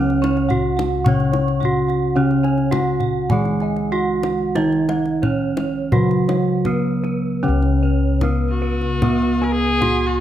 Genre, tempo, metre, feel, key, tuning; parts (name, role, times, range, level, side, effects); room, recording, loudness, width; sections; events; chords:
Javanese gamelan; 75-109 BPM; 4/4; straight; C# slendro; A4 = 435 Hz
gamelan-type bronze metallophone; melody; 0.0-10.2 s; B3-25c to C#5; -22 LUFS; right 3 dB
gamelan-type bronze metallophone; accompaniment; 0.0-10.2 s; C#3 to C#4; -23 LUFS; left 1 dB
gamelan-type bossed gongs; arpeggios; 0.0-10.2 s; B4-25c to C#6; -30 LUFS; left 5 dB
gamelan-type bronze metallophone; arpeggios; 0.0-10.2 s; B4-25c to C#6; -29 LUFS; right 6 dB
gamelan-type bossed gongs; bass; 0.0-10.2 s; C#2 to E4-45c; -22 LUFS; left 2 dB
kendang; percussion; 0.1-10.0 s; -24 LUFS; left 1 dB
rich viola; second line; 8.5-10.2 s; F#4 to B4-32c; -22 LUFS; left 3 dB
moderate recital hall reverb, RT60 1.3 s; close, detailed microphones; -16 LUFS; side -11 dB against mid
0.0-7.4 A section; 7.4-10.2 B section